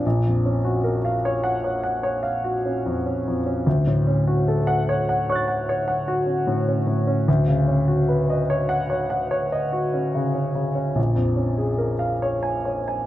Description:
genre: classical, impressionist solo piano.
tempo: 49 BPM (dotted quarters).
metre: 9/8.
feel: rubato.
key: F# major.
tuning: A4 = 438 Hz.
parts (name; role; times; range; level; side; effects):
warm grand piano; solo; 0.0-13.1 s; A#1 to A6; -20 LUFS; equal; none.
room: moderate recital hall reverb, RT60 1.7 s.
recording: close, detailed microphones.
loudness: -20 LUFS.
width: side -14 dB against mid.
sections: 0.0-13.1 A section.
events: none.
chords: 0.0 F#maj7/A#; 3.7 Dmaj7; 7.3 C#11/D; 11.0 A#m7.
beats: | 0.04 1.22 2.42 | 3.66 4.87 6.07 | 7.27 8.49 9.74 | 10.97 12.22.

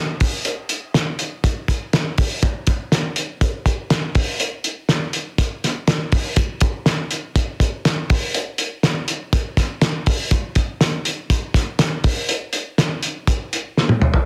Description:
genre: indie pop.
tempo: 122 BPM.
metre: 4/4.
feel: straight.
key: none.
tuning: none.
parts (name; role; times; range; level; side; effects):
cloth-damped thuddy drum kit; drums; 0.2-14.2 s; hi-hat, kick drum, snare drum, toms; -20 LUFS; equal; none.
room: moderate studio reverb, RT60 0.6 s.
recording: dense, heavily limited modern master.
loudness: -21 LUFS.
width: mono.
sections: 0.0-14.3 A section.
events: drum fill 13.8-14.3.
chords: none.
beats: | 0.46 0.95 1.44 1.94 | 2.43 2.92 3.42 3.91 | 4.40 4.89 5.39 5.88 | 6.37 6.87 7.36 7.85 | 8.35 8.84 9.33 9.82 | 10.32 10.81 11.30 11.79 | 12.29 12.78 13.27 13.76.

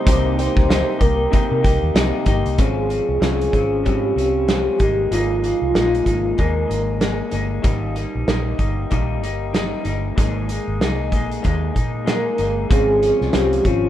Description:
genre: indie pop, bedroom pop.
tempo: 95 BPM.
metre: 4/4.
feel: swing 60% on 16ths.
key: Ab major.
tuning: A4 = 440 Hz.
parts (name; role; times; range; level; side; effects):
soft octave-layered synth lead; melody; 0.0-7.3, 12.1-13.9 s; F4 to C5; -20 LUFS; equal; tremolo, analog chorus.
electric guitar through a small old amp; accompaniment; 0.0-13.9 s; Ab2 to G4; -24 LUFS; left 2 dB; lush chorus, warbly pitch drift.
warm analog pad; sustained chords; 0.0-2.6, 12.7-13.9 s; C3 to C5; -30 LUFS; right 1 dB; none.
vintage muted fingered electric bass; bass; 0.1-13.9 s; G1 to C3; -23 LUFS; equal; none.
loose indie drum kit; drums; 0.1-13.8 s; hi-hat, kick drum, snare drum; -20 LUFS; equal; vintage 12-bit sampler grit.
room: small room ambience.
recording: rough home demo mix.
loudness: -17 LUFS.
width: side -12 dB against mid.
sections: 0.0-2.6 A section; 2.6-12.7 B section; 12.7-13.9 C section.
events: none.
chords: 0.0 Cm7; 2.6 Dbmaj7/Ab; 4.8 Absus2; 7.6 Eb; 10.2 Absus2; 12.7 Dbmaj7/Ab.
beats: | 0.07 0.70 1.33 1.96 | 2.59 3.22 3.85 4.48 | 5.12 5.75 6.38 7.01 | 7.64 8.28 8.91 9.54 | 10.17 10.81 11.44 12.07 | 12.70 13.33.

